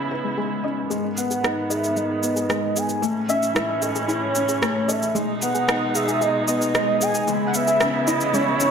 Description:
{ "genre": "piano and strings electronica", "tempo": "113 BPM", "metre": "4/4", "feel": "straight", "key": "G# phrygian", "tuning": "A4 = 440 Hz", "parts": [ { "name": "warm velvety synth lead", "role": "melody", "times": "0.0-8.7 s", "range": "C#5 to G#5", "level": "-24 LUFS", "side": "right 1 dB", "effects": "chorus, digital delay" }, { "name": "muted string quartet", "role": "sustained chords", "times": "0.0-8.7 s", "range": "G#2 to E4", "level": "-27 LUFS", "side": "right 4 dB", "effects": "low-pass filter" }, { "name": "felt-muted upright piano", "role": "riff", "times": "0.0-8.7 s", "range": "G#3 to B4", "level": "-24 LUFS", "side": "left 2 dB", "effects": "digital delay" }, { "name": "soft round pluck", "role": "arpeggios", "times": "0.2-8.4 s", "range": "G#3 to D#5", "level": "-33 LUFS", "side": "left 2 dB", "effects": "chorus, digital delay" }, { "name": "electronic shaker and rim click", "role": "drums", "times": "0.9-8.7 s", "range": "none", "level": "-26 LUFS", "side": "right 1 dB", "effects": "overdrive, low-pass filter on perc, low-pass filter on snare" } ], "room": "wet recital hall reverb, RT60 1.4 s", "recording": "none", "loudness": "-20 LUFS", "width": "side -7 dB against mid", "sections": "0.9-8.7 A section", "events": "build-up 0.9-8.7; filter sweep on string quartet 0.9-8.7", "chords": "0.0 C#m7; 0.9 G#m; 3.0 A; 5.2 G#m/B; 7.3 C#m7" }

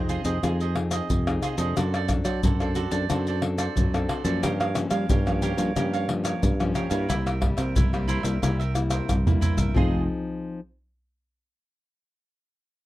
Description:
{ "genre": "samba and choro", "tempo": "90 BPM", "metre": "4/4", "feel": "straight", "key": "unclear", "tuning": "A4 = 440 Hz", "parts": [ { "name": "cavaquinho", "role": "accompaniment", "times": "0.0-10.0 s", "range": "E4 to F5", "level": "-32 LUFS", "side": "right 8 dB", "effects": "none" }, { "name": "nylon-string guitar", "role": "accompaniment", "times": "0.0-10.6 s", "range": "G2 to A4", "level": "-30 LUFS", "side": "left 3 dB", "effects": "none" }, { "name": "sustaining fretless electric bass", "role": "bass", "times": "0.0-10.1 s", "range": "F1 to G3", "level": "-27 LUFS", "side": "equal", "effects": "none" }, { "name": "maracas, pandeiro, surdo and tamborim", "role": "percussion", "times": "0.1-9.9 s", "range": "none", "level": "-26 LUFS", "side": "equal", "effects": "none" } ], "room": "little or no reverb", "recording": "dry, close 1970s-style studio recording", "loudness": "-22 LUFS", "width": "side -16 dB against mid", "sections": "0.0-9.8 A section; 9.8-12.4 B section", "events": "drum fill 9.1-9.8", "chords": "0.0 Fm7; 1.8 D7/F#; 4.4 Gm7b5; 7.1 C7; 9.8 Fm7" }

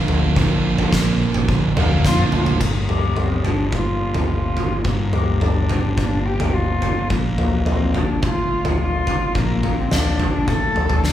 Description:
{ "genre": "post-rock", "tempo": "107 BPM", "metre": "4/4", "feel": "straight", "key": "G minor", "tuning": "A4 = 441 Hz", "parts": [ { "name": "electric guitar through a small old amp", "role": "arpeggios", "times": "0.0-11.1 s", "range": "G2 to G4", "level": "-28 LUFS", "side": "left 4 dB", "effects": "none" }, { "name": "sludgy distorted guitar", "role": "riff", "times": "0.0-2.6 s", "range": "Bb2 to D4", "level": "-20 LUFS", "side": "right 3 dB", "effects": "overdrive" }, { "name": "fuzz fingered electric bass", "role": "bass", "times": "0.1-11.1 s", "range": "G1 to F2", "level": "-24 LUFS", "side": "equal", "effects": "overdrive" }, { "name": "oversized low-tuned drum kit", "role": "drums", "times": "0.1-11.1 s", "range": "crash cymbal, kick drum, snare drum, toms", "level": "-20 LUFS", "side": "equal", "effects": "none" }, { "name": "dark cello", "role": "melody", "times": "2.0-11.1 s", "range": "Bb3 to A4", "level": "-24 LUFS", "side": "left 2 dB", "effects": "none" } ], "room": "wet large studio reverb, RT60 0.9 s", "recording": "band playing live in one room", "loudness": "-17 LUFS", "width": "side -11 dB against mid", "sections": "0.0-2.6 A section; 2.6-11.1 B section", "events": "drum fill 2.0-2.6", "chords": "0.0 Bb; 2.6 Gm7; 7.1 Bbmaj7" }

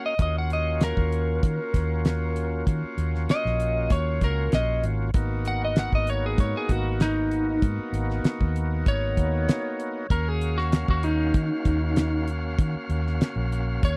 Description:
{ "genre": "straight-eighth soul blues", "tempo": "97 BPM", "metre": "4/4", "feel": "straight", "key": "Eb minor", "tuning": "A4 = 442 Hz", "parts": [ { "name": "lightly driven lead guitar", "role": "melody", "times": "0.0-14.0 s", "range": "Eb4 to Gb5", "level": "-30 LUFS", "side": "equal", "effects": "none" }, { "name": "overdriven tonewheel organ", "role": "accompaniment", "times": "0.0-14.0 s", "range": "Bb3 to F5", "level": "-34 LUFS", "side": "equal", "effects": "slow rotary speaker" }, { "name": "vintage muted fingered electric bass", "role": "bass", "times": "0.2-14.0 s", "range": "Ab1 to Eb3", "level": "-29 LUFS", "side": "equal", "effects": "none" }, { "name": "damped 70s drum kit", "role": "drums", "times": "0.2-14.0 s", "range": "hi-hat, kick drum, snare drum", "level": "-26 LUFS", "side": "equal", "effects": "none" } ], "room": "little or no reverb", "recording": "dry, close 1970s-style studio recording", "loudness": "-25 LUFS", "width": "mono", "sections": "0.0-14.0 A section", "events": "lead electric guitar solo 0.0-14.0", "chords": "0.0 Ebm7; 5.1 Abm7; 10.1 Ebm7" }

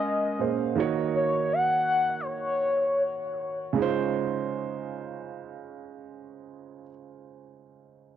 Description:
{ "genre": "R&B", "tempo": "free time", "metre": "none", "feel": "none", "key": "Db major", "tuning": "A4 = 441 Hz", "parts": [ { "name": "gliding portamento lead", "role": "melody", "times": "0.0-3.0 s", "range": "C5 to Gb5", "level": "-27 LUFS", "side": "left 2 dB", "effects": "chorus, tape echo, plate reverb" }, { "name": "dark baby grand piano", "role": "accompaniment", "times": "0.0-8.2 s", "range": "Bb2 to Db5", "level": "-30 LUFS", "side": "right 8 dB", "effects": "cassette tape, plate reverb" }, { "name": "mellow woodwind section", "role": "sustained chords", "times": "0.0-0.7 s", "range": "Ab3 to Bb4", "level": "-31 LUFS", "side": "equal", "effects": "cassette tape" } ], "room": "light reverb", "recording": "home recording on cassette", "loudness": "-24 LUFS", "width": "side -9 dB against mid", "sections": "0.0-3.8 A section; 3.8-6.8 B section", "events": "none", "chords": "0.0 Bbm9; 0.8 Ebm7; 3.8 Dbmaj9" }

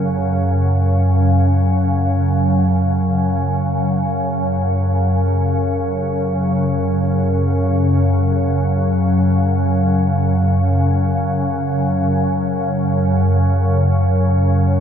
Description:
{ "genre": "dark ambient drone", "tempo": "free time", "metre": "none", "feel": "none", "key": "unclear", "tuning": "A4 = 441 Hz", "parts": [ { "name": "gamelan-type bossed gongs", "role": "arpeggios", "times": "0.0-0.7 s", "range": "none", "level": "barely audible", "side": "none", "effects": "none" }, { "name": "organ-like drone", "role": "drone", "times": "0.0-14.8 s", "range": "F#2 to C#3", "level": "-14 LUFS", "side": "equal", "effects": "ensemble chorus, built-in reverb" } ], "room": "wet huge ambient reverb, RT60 7.7 s", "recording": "none", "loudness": "-14 LUFS", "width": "side -8 dB against mid", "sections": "0.5-14.8 A section", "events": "none", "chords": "0.0 F#5" }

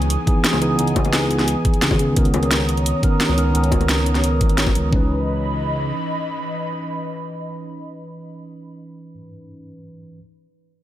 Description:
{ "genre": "liquid drum and bass", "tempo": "174 BPM", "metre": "4/4", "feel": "straight", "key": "C# dorian", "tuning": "A4 = 441 Hz", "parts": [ { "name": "mellow tine electric piano", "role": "accompaniment", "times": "0.0-10.2 s", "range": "D#3 to B4", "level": "-23 LUFS", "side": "equal", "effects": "phaser, low-pass filter, tape echo" }, { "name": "airy breathy pad", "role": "sustained chords", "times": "0.0-8.4 s", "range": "E3 to D#6", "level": "-27 LUFS", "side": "equal", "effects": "chorus, sidechain pumping" }, { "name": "smooth synth bass", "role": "bass", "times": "0.0-5.9 s", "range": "G#1 to C#2", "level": "-21 LUFS", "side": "equal", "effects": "none" }, { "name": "drum and bass drum kit", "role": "drums", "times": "0.0-4.8 s", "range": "hi-hat, snare drum", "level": "-22 LUFS", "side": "equal", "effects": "overdrive" }, { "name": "electronic kick drum", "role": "drums", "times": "0.3-5.0 s", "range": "none", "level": "-19 LUFS", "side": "equal", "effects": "overdrive" }, { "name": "bongos", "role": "percussion", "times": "0.5-4.7 s", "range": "none", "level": "-28 LUFS", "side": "left 6 dB", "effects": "none" } ], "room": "light reverb, digital ambience", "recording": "none", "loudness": "-17 LUFS", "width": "side -13 dB against mid", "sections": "0.0-4.9 A section; 4.9-7.7 B section", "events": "filter sweep on tine electric piano 0.0-4.9", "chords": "0.0 C#m9; 2.0 Bmaj9/C#; 4.9 C#m9" }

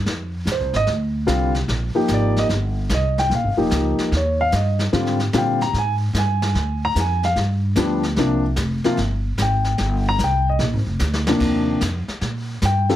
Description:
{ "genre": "jazz, small-group swing and bop", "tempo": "148 BPM", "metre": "4/4", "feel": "swing 67% on 8ths", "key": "unclear", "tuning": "A4 = 441 Hz", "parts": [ { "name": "upright bass", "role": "bass", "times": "0.0-13.0 s", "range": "Eb1 to Bb2", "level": "-21 LUFS", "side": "equal", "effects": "none" }, { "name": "vintage brush drum kit", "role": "drums", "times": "0.1-13.0 s", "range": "brushed snare drum, crash cymbal, hi-hat, kick drum, snare drum", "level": "-27 LUFS", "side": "left 1 dB", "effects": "none" }, { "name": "dark baby grand piano", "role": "accompaniment", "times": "0.5-13.0 s", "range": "Eb2 to Bb5", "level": "-20 LUFS", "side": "left 1 dB", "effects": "none" } ], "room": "light reverb", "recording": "heavily compressed radio sound", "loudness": "-18 LUFS", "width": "side -12 dB against mid", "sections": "0.0-11.4 A section; 11.4-13.0 A section", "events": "drum fill 11.0-11.4", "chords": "0.1 Fm7; 0.9 Csus24; 1.7 Eb; 3.3 Eb7; 4.9 Abmaj7; 6.5 Ddim; 7.4 G7; 8.2 C5; 10.6 Bb7; 11.4 Ebmaj9" }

